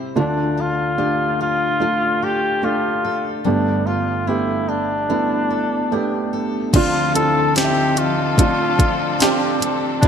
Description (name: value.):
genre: pop ballad.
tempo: 73 BPM.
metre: 4/4.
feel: straight.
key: unclear.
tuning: A4 = 443 Hz.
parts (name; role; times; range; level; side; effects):
felt-muted upright piano; accompaniment; 0.0-10.1 s; G1 to E5; -21 LUFS; right 3 dB; wide subtle chorus.
picked steel-string acoustic guitar; arpeggios; 0.0-10.1 s; C3 to C5; -26 LUFS; left 6 dB; wide subtle chorus.
clear flugelhorn; melody; 0.2-10.1 s; D4 to A4; -20 LUFS; left 1 dB; none.
rich symphonic string section; sustained chords; 6.7-10.1 s; D3 to A4; -26 LUFS; left 3 dB; none.
smooth R&B drum kit; drums; 6.7-10.1 s; crash cymbal, hi-hat, kick drum, snare drum; -18 LUFS; equal; gated reverb.
room: moderate lush hall reverb, RT60 2.4 s.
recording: bright 1980s-style digital production.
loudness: -16 LUFS.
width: side -7 dB against mid.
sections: 0.0-6.7 A section; 6.7-10.1 B section.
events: none.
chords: 0.2 Dm; 3.5 Gadd9; 6.7 Dm7.